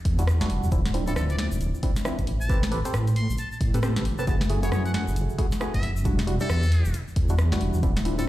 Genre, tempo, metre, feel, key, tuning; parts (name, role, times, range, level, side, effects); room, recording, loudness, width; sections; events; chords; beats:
UK garage, two-step garage; 135 BPM; 4/4; swing 61% on 16ths; A4 = 440 Hz
deep soft wobble bass; bass; 0.1-8.3 s; D1 to A2; -24 LUFS; equal; chorus
electronic kick drum; drums; 0.1-7.9 s; -27 LUFS; equal
punchy analog drum machine; drums; 0.1-8.3 s; hi-hat, rim click, snare drum; -32 LUFS; equal
percussive organ stab; stabs; 0.2-8.3 s; F3 to C5; -30 LUFS; equal; chorus, phaser, ping-pong delay
tube shaker; percussion; 0.2-8.3 s; -45 LUFS; left 2 dB
trumpet with metal mute; melody; 1.1-8.2 s; A4 to C6; -36 LUFS; left 1 dB; ping-pong delay
light reverb; played on a big sound system in a bare room, large studio reverb; -22 LUFS; side -15 dB against mid
0.0-8.3 A section
0.0 Em9; 0.7 Dm9; 2.3 Am9; 4.3 F#m9; 6.1 Em9
0.28 | 0.72 1.16 1.61 2.05 | 2.50 2.94 3.39 3.83 | 4.28 4.72 5.16 5.61 | 6.05 6.50 6.94 7.39 | 7.83 8.28